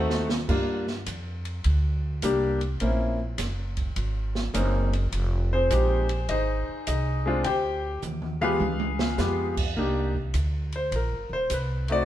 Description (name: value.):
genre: jazz piano trio.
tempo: 104 BPM.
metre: 4/4.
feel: swing 67% on 8ths.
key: C minor.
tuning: A4 = 440 Hz.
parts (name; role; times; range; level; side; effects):
clear concert grand piano; melody; 0.0-12.1 s; G3 to G5; -26 LUFS; left 2 dB; none.
upright bass; bass; 0.0-12.1 s; Eb1 to G2; -27 LUFS; equal; none.
open jazz drum kit; drums; 0.1-12.0 s; crash cymbal, hi-hat, kick drum, ride cymbal, snare drum, toms; -33 LUFS; right 2 dB; none.
room: moderate stone room reverb, RT60 1.3 s.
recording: band playing live in one room.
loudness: -24 LUFS.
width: side -12 dB against mid.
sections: 0.0-9.8 A section; 9.8-12.1 B section.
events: drum fill 0.0-0.5, 8.0-9.2; grand piano solo 9.8-12.1.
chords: 0.5 Gm7; 2.8 F#(#11); 5.1 Fm7; 7.4 Dm7b5; 8.6 Db7#11; 9.8 Cm9.